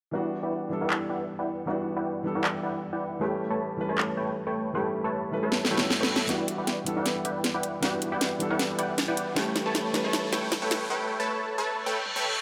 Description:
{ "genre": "future bass", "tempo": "156 BPM", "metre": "4/4", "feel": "swing 53% on 16ths, half-time", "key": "E minor", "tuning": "A4 = 440 Hz", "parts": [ { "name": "warm grand piano", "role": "accompaniment", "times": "0.1-12.4 s", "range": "E3 to B4", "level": "-35 LUFS", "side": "equal", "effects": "tape echo" }, { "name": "supersaw stab", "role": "riff", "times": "0.1-12.4 s", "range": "A3 to A5", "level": "-32 LUFS", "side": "equal", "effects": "low-pass filter, tape echo" }, { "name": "trap drum kit", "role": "drums", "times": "0.9-12.4 s", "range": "handclaps, hi-hat, snare drum, toms", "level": "-31 LUFS", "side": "equal", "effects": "none" }, { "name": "reverse cymbal and riser", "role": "sound effects", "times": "5.8-12.4 s", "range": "none", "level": "-38 LUFS", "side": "equal", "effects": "none" }, { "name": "warm 808-style bass", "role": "bass", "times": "6.3-10.9 s", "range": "none", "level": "barely audible", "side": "none", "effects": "none" } ], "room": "moderate lush hall reverb, RT60 2.1 s", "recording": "high-pass filter", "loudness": "-28 LUFS", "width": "mono", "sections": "0.1-6.3 A section; 6.3-12.4 B section", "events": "drum fill 5.5-6.3, 6.3-10.9, 12.1-12.4; reverse cymbal 5.8-6.3, 11.8-12.4; build-up 6.3-12.4; filter sweep on supersaw synth 6.3-12.4", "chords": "0.1 Em9; 3.2 A7; 6.3 Em9; 9.4 A7", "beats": "| 0.13 0.52 0.90 1.29 | 1.67 2.06 2.44 2.83 | 3.21 3.60 3.98 4.37 | 4.75 5.13 5.52 5.90 | 6.29 6.67 7.06 7.44 | 7.83 8.21 8.60 8.98 | 9.37 9.75 10.13 10.52 | 10.90 11.29 11.67 12.06" }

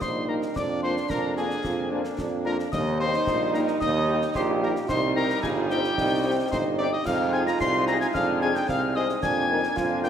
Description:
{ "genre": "military-style march for wind band", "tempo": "111 BPM", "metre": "2/4", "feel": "straight", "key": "Eb major", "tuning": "A4 = 440 Hz", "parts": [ { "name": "dark cornet", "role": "melody", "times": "0.0-10.1 s", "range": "G4 to C6", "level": "-31 LUFS", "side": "equal", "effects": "none" }, { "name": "mellow piccolo", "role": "second line", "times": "0.0-10.1 s", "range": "G5 to C7", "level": "-30 LUFS", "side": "left 4 dB", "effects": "none" }, { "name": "warm euphonium", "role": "second line", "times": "0.0-10.1 s", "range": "C4 to G4", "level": "-30 LUFS", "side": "right 3 dB", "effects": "none" }, { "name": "bright trombone section", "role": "sustained chords", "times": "0.0-10.1 s", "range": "G3 to Eb4", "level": "-33 LUFS", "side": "right 2 dB", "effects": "none" }, { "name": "warm tuba", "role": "bass", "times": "0.0-10.1 s", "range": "G1 to F2", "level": "-28 LUFS", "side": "right 2 dB", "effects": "none" }, { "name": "concert snare drum, concert bass drum and clash cymbals", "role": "drums", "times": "0.0-10.1 s", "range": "none", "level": "-37 LUFS", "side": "left 1 dB", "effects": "none" }, { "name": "mellow French horn section", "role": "accompaniment", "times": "0.3-10.1 s", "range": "Bb3 to Bb4", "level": "-34 LUFS", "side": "left 4 dB", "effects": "none" } ], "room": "wet scoring stage reverb, RT60 1.6 s", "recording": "none", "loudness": "-22 LUFS", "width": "side -8 dB against mid", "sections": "0.0-10.1 A section", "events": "none", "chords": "0.0 Eb; 0.6 Bb7/F; 2.7 Eb; 4.9 Cm; 7.1 Fm7; 9.2 Bb7/F", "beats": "0.02 | 0.56 1.11 | 1.65 2.19 | 2.73 3.27 | 3.81 4.36 | 4.90 5.44 | 5.98 6.52 | 7.06 7.60 | 8.14 8.69 | 9.23 9.77" }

